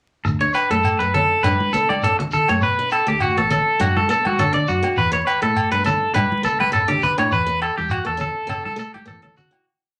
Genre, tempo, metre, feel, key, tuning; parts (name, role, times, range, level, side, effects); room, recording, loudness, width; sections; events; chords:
highlife guitar band; 102 BPM; 4/4; straight; D major; A4 = 440 Hz
electric guitar at the edge of break-up; arpeggios; 0.2-9.6 s; F#4 to D5; -21 LUFS; equal
fingered electric bass; bass; 0.2-9.5 s; A1 to E3; -29 LUFS; equal
shekere; percussion; 0.3-9.5 s; -29 LUFS; equal
picked steel-string acoustic guitar; accompaniment; 0.4-9.6 s; A3 to E4; -30 LUFS; equal
agogo bells; percussion; 0.5-9.7 s; -31 LUFS; equal
congas; percussion; 1.1-9.5 s; -30 LUFS; equal
wet club reverb, RT60 0.6 s; vinyl crackle; -19 LUFS; mono
0.2-9.7 A section
fade-out 7.3-9.7
0.2 D; 5.0 Em (rootless); 7.3 A/E